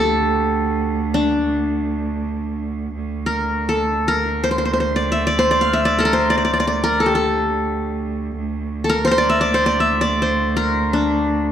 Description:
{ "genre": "Turkish makam ensemble", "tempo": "free time", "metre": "none", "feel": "none", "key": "unclear", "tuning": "A4 = 440 Hz", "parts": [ { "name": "qanun", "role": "melody", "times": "0.0-11.5 s", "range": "D4 to F5", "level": "-17 LUFS", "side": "left 1 dB", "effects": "none" }, { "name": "bright cello", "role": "drone", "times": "0.0-11.5 s", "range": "D2", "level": "-23 LUFS", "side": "right 3 dB", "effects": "none" } ], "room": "wet recital hall reverb, RT60 1.5 s", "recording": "dark, warm production", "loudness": "-17 LUFS", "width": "side -10 dB against mid", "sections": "0.0-2.9 A section; 2.9-11.5 A section", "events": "none", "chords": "none" }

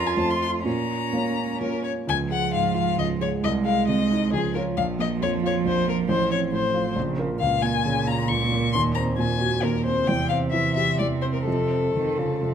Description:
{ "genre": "quick classical-period movement for piano trio", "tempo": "123-138 BPM", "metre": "3/4", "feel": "rubato", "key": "Db major", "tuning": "A4 = 442 Hz", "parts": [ { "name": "rich violin", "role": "melody", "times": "0.0-12.5 s", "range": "Ab4 to Db6", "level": "-26 LUFS", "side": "left 7 dB", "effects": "none" }, { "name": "rich cello", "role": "second line", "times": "0.0-12.5 s", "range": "Bb2 to F4", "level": "-26 LUFS", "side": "right 6 dB", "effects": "none" }, { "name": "warm grand piano", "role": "accompaniment", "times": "0.0-12.5 s", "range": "A1 to Db5", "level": "-26 LUFS", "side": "right 1 dB", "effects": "none" } ], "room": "moderate recital hall reverb, RT60 1.3 s", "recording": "none", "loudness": "-21 LUFS", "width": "side -8 dB against mid", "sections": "0.0-2.1 A section; 2.1-12.5 B section", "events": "none", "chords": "0.2 F; 0.7 Bbm; 2.1 Db; 3.4 Ab/C; 4.3 Db; 4.8 Bb5; 6.1 F/A; 7.0 Bbm; 7.4 Bbm/Db; 8.7 Cm7b5/Eb; 10.1 C/E; 11.5 F" }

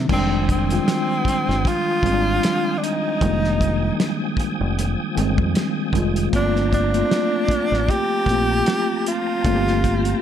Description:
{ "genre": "R&B, neo-soul", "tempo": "77 BPM", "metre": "4/4", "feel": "swing 55% on 16ths", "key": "unclear", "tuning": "A4 = 440 Hz", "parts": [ { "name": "mellow tine electric piano", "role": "accompaniment", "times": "0.0-10.2 s", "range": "D3 to G4", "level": "-22 LUFS", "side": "left 1 dB", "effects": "medium stereo tremolo" }, { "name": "deep dub fingered electric bass", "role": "bass", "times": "0.0-10.1 s", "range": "F1 to F2", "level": "-23 LUFS", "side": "equal", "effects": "none" }, { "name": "breathy tenor saxophone", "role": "melody", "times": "0.1-10.2 s", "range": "C4 to G4", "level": "-22 LUFS", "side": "equal", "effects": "none" }, { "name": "tonewheel organ", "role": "sustained chords", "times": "0.1-10.2 s", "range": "F3 to Eb6", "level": "-31 LUFS", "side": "right 1 dB", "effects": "fast rotary speaker, chorus vibrato" }, { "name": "cloth-damped thuddy drum kit", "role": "drums", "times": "0.1-10.2 s", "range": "crash cymbal, hi-hat, kick drum, snare drum", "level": "-24 LUFS", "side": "equal", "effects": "none" } ], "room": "light reverb, small room ambience", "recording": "none", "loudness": "-18 LUFS", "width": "side -9 dB against mid", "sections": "0.1-10.2 A section", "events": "none", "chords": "0.1 Fm9; 6.3 Gm9" }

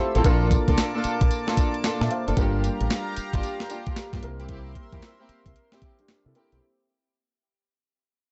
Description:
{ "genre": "R&B, new jack swing", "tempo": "113 BPM", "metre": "4/4", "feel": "swing 64% on 16ths", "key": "unclear", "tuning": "A4 = 443 Hz", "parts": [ { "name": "dark baby grand piano", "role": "accompaniment", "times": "0.0-6.8 s", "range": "G3 to A5", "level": "-33 LUFS", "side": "equal", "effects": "none" }, { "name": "chorused pulse-width pad", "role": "sustained chords", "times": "0.0-6.6 s", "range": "Bb3 to E6", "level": "-36 LUFS", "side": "equal", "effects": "none" }, { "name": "dark studio string section", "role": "stabs", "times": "0.0-6.6 s", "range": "Bb3 to A4", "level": "-33 LUFS", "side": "equal", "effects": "tape echo" }, { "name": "deep dub fingered electric bass", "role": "bass", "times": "0.2-6.6 s", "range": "Gb1 to C3", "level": "-28 LUFS", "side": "equal", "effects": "none" }, { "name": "clean 12-bit digital drum machine", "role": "drums", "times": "0.2-6.6 s", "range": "hi-hat, kick drum, snare drum, tambourine", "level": "-27 LUFS", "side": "equal", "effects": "none" } ], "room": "light reverb, digital ambience", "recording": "dark, warm production, nothing above 8.0 kHz", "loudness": "-24 LUFS", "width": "mono", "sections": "0.0-6.6 A section", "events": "fade-out 0.0-6.6", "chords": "0.2 Bbmaj7; 2.4 Gm7; 4.2 C7" }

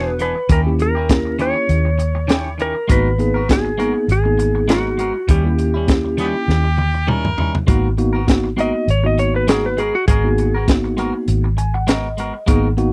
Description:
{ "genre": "straight-eighth soul blues", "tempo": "100 BPM", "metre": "4/4", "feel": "swing 55% on 16ths", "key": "G# minor", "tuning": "A4 = 445 Hz", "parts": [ { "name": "clean lap steel guitar", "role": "melody", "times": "0.0-10.7 s", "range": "F#4 to D#5", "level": "-24 LUFS", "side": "equal", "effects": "none" }, { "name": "mellow tine electric piano", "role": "accompaniment", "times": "0.0-12.9 s", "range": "A#3 to G#5", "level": "-24 LUFS", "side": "equal", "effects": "none" }, { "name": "clean electric guitar", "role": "stabs", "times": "0.0-12.8 s", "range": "D#3 to A#4", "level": "-28 LUFS", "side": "equal", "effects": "none" }, { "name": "vintage muted fingered electric bass", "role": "bass", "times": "0.0-12.9 s", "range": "E1 to D#2", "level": "-22 LUFS", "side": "equal", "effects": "none" }, { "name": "crunchy breakbeat drum kit", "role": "drums", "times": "0.2-12.9 s", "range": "hi-hat, kick drum, snare drum, toms", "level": "-19 LUFS", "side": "equal", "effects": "none" }, { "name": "warm harmonica", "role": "second line", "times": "6.2-7.5 s", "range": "B3 to A#4", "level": "-25 LUFS", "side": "equal", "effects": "overdrive" } ], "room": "little or no reverb", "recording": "dry, close 1970s-style studio recording", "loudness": "-17 LUFS", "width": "mono", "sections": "0.0-7.7 A section; 7.7-12.9 B section", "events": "drum fill 6.5-7.7; electric slide guitar solo 7.7-12.9; tine electric piano fill 11.3-12.5", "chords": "0.5 D#7b9; 2.9 G#m9; 5.3 D#7b9; 7.7 G#m9" }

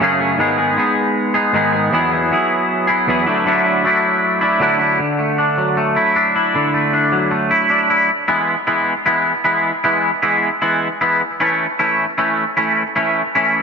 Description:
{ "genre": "rock", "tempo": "155 BPM", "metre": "4/4", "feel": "straight", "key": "E major", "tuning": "A4 = 439 Hz", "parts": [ { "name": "twangy electric guitar", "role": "solo", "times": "0.0-13.6 s", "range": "E2 to G#4", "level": "-14 LUFS", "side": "equal", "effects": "lush chorus, analog delay" } ], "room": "wet plate reverb, RT60 3.2 s", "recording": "dreamy mix soaked in reverb", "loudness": "-14 LUFS", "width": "side -5 dB against mid", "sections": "0.0-5.0 A section; 5.0-8.1 B section; 8.1-13.6 C section", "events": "none", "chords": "0.4 G#m; 1.9 Eadd9; 3.3 Dadd9; 8.1 E; 11.2 A" }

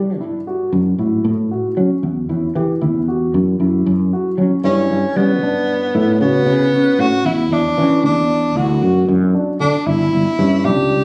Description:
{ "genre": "progressive instrumental, band music in an uneven meter", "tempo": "230 BPM (eighths)", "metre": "5/8", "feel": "straight", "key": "unclear", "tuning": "A4 = 439 Hz", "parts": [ { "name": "dark concert grand piano", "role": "arpeggios", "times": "0.0-11.0 s", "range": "C#4 to G4", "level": "-22 LUFS", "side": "equal", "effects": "tape echo" }, { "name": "sustaining fretless electric bass", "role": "bass", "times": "0.0-11.0 s", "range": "G1 to G3", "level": "-19 LUFS", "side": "equal", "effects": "none" }, { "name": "breathy tenor saxophone", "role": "melody", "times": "4.6-11.0 s", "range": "B3 to G4", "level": "-20 LUFS", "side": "equal", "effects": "none" } ], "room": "light reverb", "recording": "recorded on a phone in the room, club reverb, compression", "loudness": "-16 LUFS", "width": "mono", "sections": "0.0-4.6 A section; 4.6-11.0 B section", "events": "none", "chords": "0.0 Emadd9/G; 0.7 F#m7; 2.0 N.C.; 3.3 C#madd11/F# (rootless); 4.6 G6; 6.0 A; 7.3 Dsus2/E; 8.6 D; 9.9 G5" }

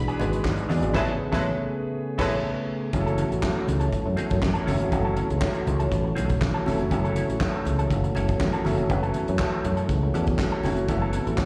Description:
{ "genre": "disco", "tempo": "121 BPM", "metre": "4/4", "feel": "straight", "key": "F# minor", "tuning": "A4 = 441 Hz", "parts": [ { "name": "clear symphonic string section", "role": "second line", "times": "0.0-2.4 s", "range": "A4 to B5", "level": "-40 LUFS", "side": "equal", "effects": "slapback echo" }, { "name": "warm baby grand piano", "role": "accompaniment", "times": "0.0-11.5 s", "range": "F#3 to D5", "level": "-34 LUFS", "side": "equal", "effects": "slapback echo" }, { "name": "mellow tonewheel organ", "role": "sustained chords", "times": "0.0-11.5 s", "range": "C#3 to G#4", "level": "-32 LUFS", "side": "equal", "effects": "chorus vibrato, slow rotary speaker" }, { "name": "semi-hollow electric guitar", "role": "accompaniment", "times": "0.1-11.5 s", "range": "E3 to A4", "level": "-36 LUFS", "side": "equal", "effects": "wah, slapback echo" }, { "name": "warm soul drum kit", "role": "drums", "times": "0.1-11.5 s", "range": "crash cymbal, handclaps, hi-hat, kick drum, snare drum", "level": "-32 LUFS", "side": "equal", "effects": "none" }, { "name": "fingered electric bass", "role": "bass", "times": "0.2-11.4 s", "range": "E#1 to G#2", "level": "-28 LUFS", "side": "equal", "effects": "none" }, { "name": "congas", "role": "percussion", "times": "0.2-11.5 s", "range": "none", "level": "-37 LUFS", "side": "equal", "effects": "none" }, { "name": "warm horn section", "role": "stabs", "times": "0.9-2.3, 10.9-11.5 s", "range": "F#3 to B4", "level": "-34 LUFS", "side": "equal", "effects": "slapback echo" } ], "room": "little or no reverb", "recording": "live gig heard through the venue's PA, recital hall reverb", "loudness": "-25 LUFS", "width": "mono", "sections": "0.0-2.9 A section; 2.9-11.5 B section", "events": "band accent 0.9-2.9; grand piano fill 1.9-2.9", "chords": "0.0 E9/G#; 0.9 Amaj9; 2.9 F#m7" }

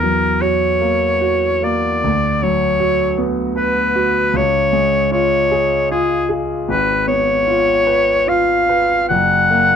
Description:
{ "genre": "classical, romantic duo for oboe and grand piano", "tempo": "77 BPM", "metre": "3/4", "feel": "uneven beats, rubato", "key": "unclear", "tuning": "A4 = 439 Hz", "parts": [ { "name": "bright oboe", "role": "melody", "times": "0.0-9.8 s", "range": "G#4 to F#5", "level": "-15 LUFS", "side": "left 2 dB", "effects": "none" }, { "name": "clear concert grand piano", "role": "accompaniment", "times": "0.0-9.8 s", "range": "F#1 to B4", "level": "-18 LUFS", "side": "right 1 dB", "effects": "none" } ], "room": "light reverb", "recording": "dark, warm production", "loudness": "-14 LUFS", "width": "side -7 dB against mid", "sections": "0.0-9.8 A section", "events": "none", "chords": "0.0 F#7/E; 2.1 Bm/D; 4.4 C#; 6.7 C#7/G#; 9.1 F#" }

